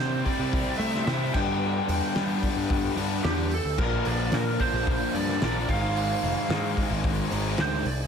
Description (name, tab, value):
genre	quiet-loud alternative rock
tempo	111 BPM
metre	4/4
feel	straight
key	unclear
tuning	A4 = 440 Hz
part	lead guitar through a small cranked amp	melody	0.0-7.9 s	G4 to G5	-31 LUFS	right 3 dB	overdrive
part	tonewheel organ	sustained chords	0.0-8.1 s	D4 to Ab5	-39 LUFS	equal	none
part	distorted electric guitar	riff	0.0-7.8 s	G2 to G4	-31 LUFS	left 14 dB	distortion
part	raw garage guitar	riff	0.0-7.8 s	G2 to C4	-33 LUFS	right 12 dB	overdrive, phaser
part	fuzz picked electric bass	bass	0.0-8.1 s	F1 to A3	-30 LUFS	equal	overdrive
part	loose indie drum kit	drums	0.3-8.0 s	crash cymbal, hi-hat, kick drum, snare drum	-30 LUFS	equal	none
room	light reverb, small room ambience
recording	none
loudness	-24 LUFS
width	side -7 dB against mid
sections	0.0-8.1 A section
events	none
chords	0.0 C; 1.3 G; 3.8 Bb; 5.7 Ab